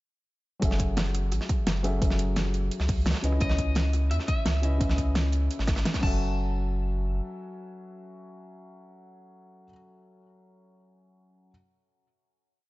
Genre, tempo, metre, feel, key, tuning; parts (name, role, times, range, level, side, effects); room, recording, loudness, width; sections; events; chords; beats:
liquid drum and bass; 172 BPM; 4/4; straight; F# minor; A4 = 441 Hz
felt-muted upright piano; accompaniment; 0.6-11.5 s; C#3 to E5; -34 LUFS; left 1 dB; dub echo
warm sub bass; bass; 0.6-7.2 s; F#1 to E2; -27 LUFS; equal
electronic kick drum; drums; 0.6-6.1 s; -27 LUFS; equal; overdrive
pop drum kit; drums; 0.6-6.1 s; crash cymbal, hi-hat, rim click, snare drum; -32 LUFS; equal; overdrive
tight metal drum kit; drums; 0.6-6.0 s; hi-hat, snare drum; -36 LUFS; right 1 dB; high-pass filter on hats, high-pass filter on snare, high-pass filter on room
electric guitar at the edge of break-up; melody; 3.4-9.7 s; D#5 to A5; -37 LUFS; left 1 dB; vintage 12-bit sampler grit, dub echo
small room ambience; nothing above 7.6 kHz; -24 LUFS; side -19 dB against mid
0.6-6.2 drop; 6.2-9.0 final hit
drop 0.6-6.2
0.6 F#m9; 3.2 C#m9; 6.0 F#m7
| 0.62 0.97 1.32 1.67 | 2.02 2.37 2.71 3.06 | 3.41 3.76 4.11 4.46 | 4.81 5.16 5.50 5.85 | 6.20 6.55 6.90 7.25 | 7.60 7.95 8.30 8.64